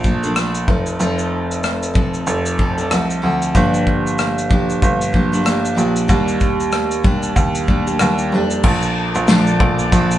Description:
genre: acoustic pop.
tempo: 94 BPM.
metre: 4/4.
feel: swing 60% on 16ths.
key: Bb major.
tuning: A4 = 441 Hz.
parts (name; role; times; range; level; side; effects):
picked steel-string acoustic guitar; accompaniment; 0.0-10.2 s; G2 to A4; -18 LUFS; equal; none.
clear baby grand piano; bass; 0.0-10.2 s; F1 to Eb2; -20 LUFS; right 1 dB; none.
modern studio drum kit; drums; 0.0-10.2 s; crash cymbal, kick drum, rim click, shaker, snare drum; -19 LUFS; equal; none.
tonewheel organ; sustained chords; 8.6-10.2 s; Bb3 to D6; -24 LUFS; left 2 dB; chorus vibrato, slow rotary speaker.
room: moderate stone room reverb, RT60 0.9 s.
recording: band playing live in one room, nothing above 10.9 kHz.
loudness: -14 LUFS.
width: side -12 dB against mid.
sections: 0.0-8.6 A section; 8.6-10.2 B section.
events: none.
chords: 0.0 Bbmaj7; 0.7 F7; 3.5 Gm7; 6.1 Ebmaj7; 8.6 Bbmaj7.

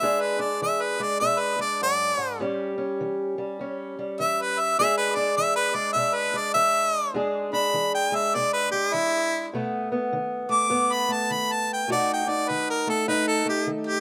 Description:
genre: acoustic country blues, solo or duo.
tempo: 101 BPM.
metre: 4/4.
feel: swing 63% on 8ths.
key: E mixolydian.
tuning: A4 = 440 Hz.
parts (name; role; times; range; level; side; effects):
bright harmonica; melody; 0.0-14.0 s; E4 to D6; -25 LUFS; equal; none.
fingerpicked steel-string acoustic guitar; accompaniment; 0.0-14.0 s; E2 to G#4; -30 LUFS; equal; slapback echo.
room: little or no reverb.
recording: recorded outdoors, with no room sound.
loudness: -25 LUFS.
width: mono.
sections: 0.0-14.0 A section.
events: harmonica solo 0.0-14.0.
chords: 0.0 E7; 2.4 A7; 4.8 E7; 9.5 B7.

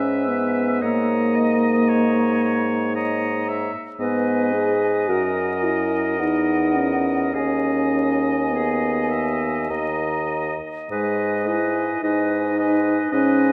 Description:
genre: classical, slow romantic movement for wind quintet.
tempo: 49-57 BPM.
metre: 3/4.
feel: rubato.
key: G# minor.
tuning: A4 = 440 Hz.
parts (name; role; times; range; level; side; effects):
mellow hollow concert flute; melody; 0.0-13.5 s; F#5 to A#5; -32 LUFS; equal; none.
clear oboe; second line; 0.0-13.5 s; C#5 to E5; -30 LUFS; equal; none.
bright clarinet; accompaniment; 0.0-13.5 s; G#4 to E5; -33 LUFS; equal; none.
dark French horn; accompaniment; 0.0-13.5 s; G#3 to G#4; -24 LUFS; equal; none.
warm bassoon; bass; 0.0-13.5 s; D#2 to G#2; -27 LUFS; equal; none.
room: wet concert hall reverb, RT60 1.8 s.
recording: dark, warm production, vinyl crackle.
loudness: -21 LUFS.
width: mono.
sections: 0.0-13.5 A section.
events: none.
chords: 0.0 G#m; 0.8 D#5/G#; 4.0 G#m; 6.2 C#m/E; 7.3 G#m/D#; 9.7 D#5; 10.9 G#m.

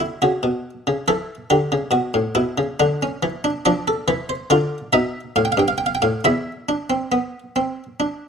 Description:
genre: classical, baroque-style 3-part fugue for harpsichord.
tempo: 69 BPM.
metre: 3/4.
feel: straight.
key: unclear.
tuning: A4 = 440 Hz.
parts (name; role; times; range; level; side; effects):
buff-stop harpsichord; solo; 0.0-8.3 s; E2 to G5; -18 LUFS; equal; none.
room: moderate stone room reverb, RT60 1.0 s.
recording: close, detailed microphones.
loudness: -18 LUFS.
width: side -6 dB against mid.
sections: 0.0-8.3 A section.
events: none.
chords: 0.2 F#5; 1.1 Em; 2.8 Dsus2; 3.7 Dm; 5.4 F7; 6.2 E5.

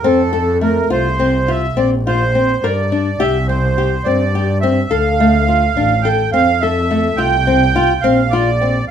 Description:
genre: contemporary instrumental, chamber music in an uneven meter.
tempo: 210 BPM (eighths).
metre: 11/8.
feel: straight.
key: unclear.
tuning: A4 = 440 Hz.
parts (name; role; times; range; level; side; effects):
accordion; melody; 0.0-8.9 s; A4 to G5; -17 LUFS; right 6 dB; light tremolo tuning.
flamenco guitar; arpeggios; 0.0-8.8 s; A3 to Bb4; -17 LUFS; left 4 dB; none.
muted double bass; bass; 0.0-8.9 s; A1 to G2; -18 LUFS; left 1 dB; none.
room: moderate studio ambience, RT60 0.5 s.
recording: none.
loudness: -12 LUFS.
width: side -8 dB against mid.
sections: 0.0-8.9 A section.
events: none.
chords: 0.0 F; 1.8 Bbadd9; 3.2 C5; 4.9 Dm; 6.3 Fmaj7; 8.0 Bbadd9.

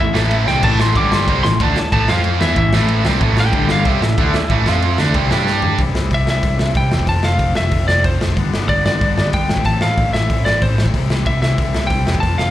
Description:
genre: punk rock.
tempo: 186 BPM.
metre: 4/4.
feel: straight.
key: A minor.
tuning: A4 = 442 Hz.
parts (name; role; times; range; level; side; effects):
lightly driven lead guitar; melody; 0.0-12.5 s; C5 to D6; -20 LUFS; left 1 dB; slapback echo.
crunchy overdriven guitar; riff; 0.0-12.5 s; G2 to G4; -24 LUFS; left 8 dB; slapback echo.
fuzz guitar; riff; 0.0-5.8 s; G2 to G4; -23 LUFS; left 1 dB; distortion, slapback echo.
tight distorted guitar; riff; 0.0-5.8 s; G2 to G4; -20 LUFS; right 10 dB; distortion.
overdriven picked electric bass; bass; 0.0-12.5 s; F1 to G2; -18 LUFS; equal; none.
raw garage drum kit; drums; 0.2-12.5 s; crash cymbal, hi-hat, kick drum, ride cymbal, snare drum, toms; -20 LUFS; equal; none.
room: little or no reverb.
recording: live gig heard through the venue's PA, club reverb.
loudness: -13 LUFS.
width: side -13 dB against mid.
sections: 0.0-5.8 A section; 5.8-12.5 B section.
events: drum fill 0.5, 5.5-5.8.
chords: 0.0 Am; 1.0 G5; 1.3 Am; 2.1 F5; 2.4 Am; 3.5 G5; 3.9 Am; 4.7 F5; 5.0 Am; 5.3 G5; 5.8 C; 7.1 F; 8.4 G; 9.5 Am; 10.9 C.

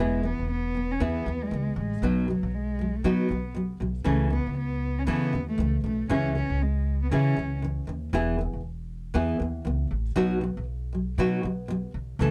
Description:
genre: pop.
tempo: 118 BPM.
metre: 4/4.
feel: swing 60% on 16ths.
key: E major.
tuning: A4 = 440 Hz.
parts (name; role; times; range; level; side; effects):
dark cello; melody; 0.0-7.6, 12.2-12.3 s; F#3 to C#4; -33 LUFS; equal; none.
nylon-string guitar; accompaniment; 0.0-12.3 s; B2 to A4; -30 LUFS; equal; none.
upright bass; bass; 0.0-12.3 s; E1 to C#3; -31 LUFS; equal; none.
room: little or no reverb.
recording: dark, warm production.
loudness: -27 LUFS.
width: mono.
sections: 0.0-12.3 A section.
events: none.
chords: 0.0 E; 2.0 B; 4.1 A/C#; 6.1 C#m; 8.1 E; 10.2 B.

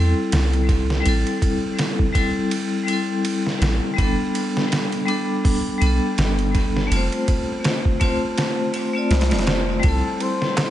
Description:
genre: trip hop.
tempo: 82 BPM.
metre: 4/4.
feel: swing 57% on 16ths.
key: A minor.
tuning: A4 = 440 Hz.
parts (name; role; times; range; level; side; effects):
vibraphone with hard mallets; accompaniment; 0.0-10.7 s; G3 to D5; -22 LUFS; left 2 dB; tremolo, tape echo.
soft 808-style bass; bass; 0.0-10.0 s; F1 to E2; -20 LUFS; equal; none.
trip hop sampler-style drum kit; drums; 0.3-10.7 s; hi-hat, kick drum, ride cymbal, snare drum; -23 LUFS; right 1 dB; dub echo.
swell; sound effects; 8.7-9.8 s; none; -32 LUFS; equal; none.
trumpet with bucket mute; melody; 9.8-10.7 s; A4 to C5; -26 LUFS; left 2 dB; none.
darbuka; percussion; 10.6-10.7 s; none; -27 LUFS; right 3 dB; none.
room: light reverb.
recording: echo-heavy mix, nothing above 10.7 kHz.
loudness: -18 LUFS.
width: side -12 dB against mid.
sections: 0.0-10.7 A section.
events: kick drops out 8.4-9.8; swell 8.7-9.8.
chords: 0.0 C6; 1.1 Am7; 4.0 Gadd9; 6.9 F; 9.8 C6.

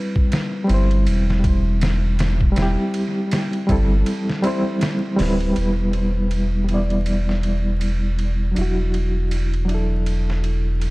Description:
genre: trip hop.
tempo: 80 BPM.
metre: 4/4.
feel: swing 58% on 16ths.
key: E minor.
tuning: A4 = 440 Hz.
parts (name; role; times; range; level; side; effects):
reed electric piano; accompaniment; 0.0-10.9 s; F#3 to D5; -22 LUFS; equal; fast tremolo, vintage 12-bit sampler grit, low-pass filter, tape echo.
trip hop sampler-style drum kit; drums; 0.2-10.9 s; hi-hat, kick drum, ride cymbal, snare drum; -26 LUFS; equal; high-pass filter on cymbals, high-pass filter on kick, high-pass filter on snare, high-pass filter on hats, analog delay.
round analog bass; bass; 0.7-10.9 s; D1 to G1; -20 LUFS; equal; tube saturation.
room: little or no reverb.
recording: echo-heavy mix, vinyl crackle.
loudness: -18 LUFS.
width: side -22 dB against mid.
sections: 0.0-5.6 A section; 5.6-10.9 B section.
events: kick drops out 4.1-5.6; filter sweep on reed electric piano 5.6-10.9.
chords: 0.0 Cmaj7; 2.6 Am7/E; 5.6 Em; 8.6 Dadd9/E.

